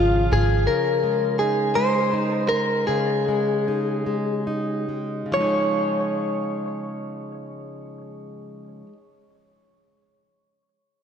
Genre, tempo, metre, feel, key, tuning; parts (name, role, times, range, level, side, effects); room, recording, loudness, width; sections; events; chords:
six-eight pop ballad; 45-56 BPM (dotted quarters); 6/8; straight; Db major; A4 = 439 Hz
direct-recorded clean electric guitar; melody; 0.0-8.9 s; F4 to F5; -23 LUFS; left 1 dB; wide subtle chorus, analog delay
fingerpicked plugged-in steel-string acoustic guitar; accompaniment; 0.0-9.0 s; Db3 to Ab4; -26 LUFS; equal
vintage muted fingered electric bass; bass; 0.0-0.7 s; Ab1; -20 LUFS; equal
wet plate reverb, RT60 3.0 s; dreamy mix soaked in reverb; -20 LUFS; side -7 dB against mid
0.7-5.3 A section; 5.3-10.6 B section
slowing down 0.7-5.3
0.0 Db; 0.7 Dbsus2